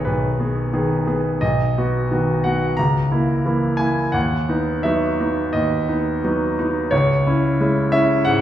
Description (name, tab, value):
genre	classical, romantic character piece for solo piano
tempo	88 BPM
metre	4/4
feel	rubato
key	unclear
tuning	A4 = 441 Hz
part	bright concert grand piano	solo	0.0-8.4 s	B1 to A#5	-17 LUFS	equal	none
room	wet recital hall reverb, RT60 1.6 s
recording	heard from further back in the room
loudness	-17 LUFS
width	side -11 dB against mid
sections	0.0-8.4 A section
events	none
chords	0.0 G#m/B; 1.4 B; 2.8 A#dim/C#; 4.2 B/D#; 6.9 C#m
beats	0.07 0.73 | 1.42 2.11 2.78 3.46 | 4.15 4.85 5.55 6.24 | 6.92 7.60 8.26